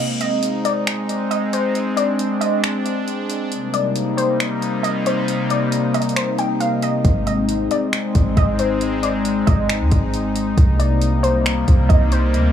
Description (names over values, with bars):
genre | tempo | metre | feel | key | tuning
hip hop, atmospheric cloud-rap | 136 BPM | 4/4 | half-time | unclear | A4 = 439 Hz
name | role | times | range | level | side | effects
sweeping resonant pad | sustained chords | 0.0-12.5 s | C3 to Eb4 | -20 LUFS | left 2 dB | chorus, sidechain pumping
warbly dusty pluck | melody | 0.2-12.3 s | C5 to G5 | -23 LUFS | left 1 dB | chorus, tape echo
smooth R&B drum kit | drums | 0.2-12.4 s | finger snaps, hi-hat, kick drum | -20 LUFS | equal | overdrive
soft 808-style bass | bass | 7.0-12.5 s | Ab1 to Eb2 | -19 LUFS | equal | none
room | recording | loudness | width
light reverb | small room ambience | -16 LUFS | side -9 dB against mid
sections
0.0-12.5 A section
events
break 0.0-7.0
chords
0.0 Ab; 3.5 Cm7; 7.0 Ab; 10.6 Cm7